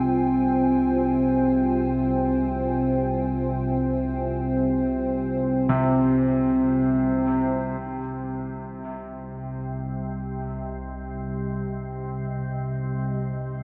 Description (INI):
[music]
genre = ambient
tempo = free time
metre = none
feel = none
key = C minor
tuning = A4 = 440 Hz
[part]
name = dark analog pad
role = sustained chords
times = 0.0-13.6 s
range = C4 to Ab5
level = -26 LUFS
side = equal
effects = chorus
[part]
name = warm grand piano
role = arpeggios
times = 0.0-13.6 s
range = C3 to G3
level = -30 LUFS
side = equal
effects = diffuse ambient delay
[part]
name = organ-like drone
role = drone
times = 0.0-13.6 s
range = C2 to C3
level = -31 LUFS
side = equal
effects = ensemble chorus, built-in reverb
[sound]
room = wet huge ambient reverb, RT60 8.3 s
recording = none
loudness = -25 LUFS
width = mono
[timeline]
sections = 0.0-7.8 A section; 7.8-13.6 B section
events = fade-in on analog synth pad 7.8-13.6; fade-in on grand piano 7.8-13.6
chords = 0.0 Fmadd9/C; 7.8 Cm